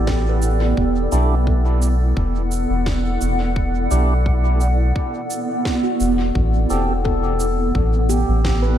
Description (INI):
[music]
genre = ambient dub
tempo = 86 BPM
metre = 4/4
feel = straight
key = E minor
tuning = A4 = 440 Hz
[part]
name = granular cloud pad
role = sustained chords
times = 0.0-8.8 s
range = B3 to F#5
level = -22 LUFS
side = right 1 dB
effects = built-in reverb
[part]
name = handpan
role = arpeggios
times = 0.0-8.8 s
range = F#4 to B4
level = -27 LUFS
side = left 2 dB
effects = ping-pong delay
[part]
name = soft dub sub bass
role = bass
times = 0.0-8.8 s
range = E1 to B1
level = -18 LUFS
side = equal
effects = tube saturation
[part]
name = electronic kick drum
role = drums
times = 0.1-8.6 s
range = none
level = -24 LUFS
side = equal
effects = none
[part]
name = electronic snare drum and cabasa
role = drums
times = 0.1-8.6 s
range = none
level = -32 LUFS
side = right 1 dB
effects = dub echo
[part]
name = tonewheel organ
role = stabs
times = 1.1-6.9 s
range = C4 to A4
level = -28 LUFS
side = right 2 dB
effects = slow rotary speaker, dub echo
[sound]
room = light reverb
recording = none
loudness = -16 LUFS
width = side -10 dB against mid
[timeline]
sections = 0.0-8.8 A section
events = none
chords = 0.0 A7(no3); 0.8 Em7; 6.4 Am7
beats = 0.08 | 0.77 1.47 2.17 2.87 | 3.56 4.26 4.96 5.66 | 6.36 7.05 7.75 8.45